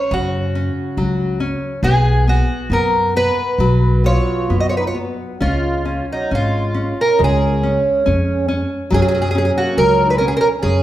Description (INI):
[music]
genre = fado-style ballad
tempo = 68 BPM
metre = 2/4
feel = rubato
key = F# major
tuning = A4 = 440 Hz
[part]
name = fingerpicked twelve-string acoustic guitar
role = melody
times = 0.0-10.8 s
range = D#4 to D#5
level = -18 LUFS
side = equal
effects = none
[part]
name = nylon-string guitar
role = accompaniment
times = 0.0-10.8 s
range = C#3 to C#4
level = -22 LUFS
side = left 2 dB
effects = none
[part]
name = upright bass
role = bass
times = 0.1-10.8 s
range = G#1 to F#2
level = -18 LUFS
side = equal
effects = none
[part]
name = mellow accordion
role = second line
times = 4.1-10.8 s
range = F#3 to F#4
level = -22 LUFS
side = right 3 dB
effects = none
[sound]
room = wet recital hall reverb, RT60 1.6 s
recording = recorded in a church or concert hall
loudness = -14 LUFS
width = side -13 dB against mid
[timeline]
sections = 0.0-10.8 A section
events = none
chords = 0.0 F#5; 1.8 B5; 5.4 C#; 8.9 F#5